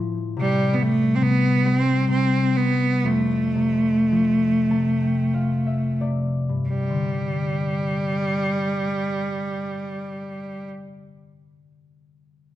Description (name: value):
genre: celtic folk, Celtic slow air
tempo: 43-72 BPM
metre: 3/4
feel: rubato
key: G mixolydian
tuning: A4 = 441 Hz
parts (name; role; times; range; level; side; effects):
- concert harp; accompaniment; 0.0-10.9 s; F2 to A5; -24 LUFS; left 2 dB; none
- bright cello; melody; 0.4-10.7 s; G3 to C4; -22 LUFS; right 1 dB; none
room: wet scoring stage reverb, RT60 1.7 s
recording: none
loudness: -19 LUFS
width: side -13 dB against mid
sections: 0.0-6.7 A section; 6.7-10.7 B section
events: slowing down 0.4-6.7; harp fill 4.1-6.7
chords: 0.4 C5; 3.0 F; 6.7 G5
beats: | 0.37 1.20 2.08 | 3.04 4.11 5.34 | 6.70 8.05 9.35